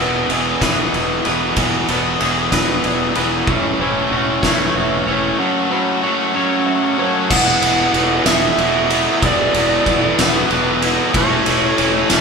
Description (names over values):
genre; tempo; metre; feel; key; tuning
post-rock; 63 BPM (dotted quarters); 6/8; straight; E major; A4 = 439 Hz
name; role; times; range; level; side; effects
felt-muted upright piano; arpeggios; 0.0-7.3 s; B4 to F#5; -32 LUFS; right 4 dB; none
twangy electric guitar; arpeggios; 0.0-7.3 s; E3 to C#5; -26 LUFS; left 2 dB; none
distorted electric guitar; riff; 0.0-12.2 s; E2 to E4; -20 LUFS; right 7 dB; distortion
tight distorted guitar; riff; 0.0-12.2 s; E3 to F#4; -18 LUFS; left 4 dB; distortion
growling fingered electric bass; bass; 0.0-12.2 s; E1; -27 LUFS; equal; overdrive
oversized low-tuned drum kit; drums; 0.3-12.2 s; crash cymbal, kick drum, ride cymbal, snare drum; -18 LUFS; equal; none
overdriven slide guitar; melody; 7.3-12.2 s; B4 to F#5; -20 LUFS; right 3 dB; none
room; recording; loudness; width
moderate studio ambience, RT60 0.5 s; band playing live in one room; -14 LUFS; side -5 dB against mid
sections
0.0-7.3 A section; 7.3-12.2 B section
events
build-up 0.0-7.3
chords
0.0 Emaj7; 1.6 E7; 3.5 A6/E; 5.4 F#m7; 7.3 E; 11.1 A/E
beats
0.62 | 1.57 2.53 | 3.49 4.44 | 5.40 6.36 | 7.31 8.27 | 9.23 10.19 | 11.14 12.10